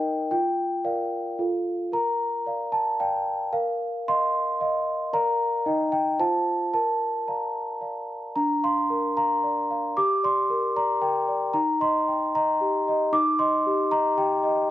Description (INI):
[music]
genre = classical, lullaby for celesta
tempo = 113 BPM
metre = 3/4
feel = straight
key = Bb major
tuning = A4 = 440 Hz
[part]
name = large celesta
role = solo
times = 0.0-14.7 s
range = D4 to D6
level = -22 LUFS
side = equal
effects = none
[sound]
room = light reverb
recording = dark, warm production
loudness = -22 LUFS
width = side -13 dB against mid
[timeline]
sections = 0.0-8.4 A section; 8.4-14.7 B section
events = none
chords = 0.3 Bb/F; 1.4 F; 1.9 Bb; 3.5 F5/Bb; 5.1 Bb; 5.6 Eb; 6.2 F; 6.7 Bb; 8.4 Bb/D; 10.0 Gm; 11.5 Eb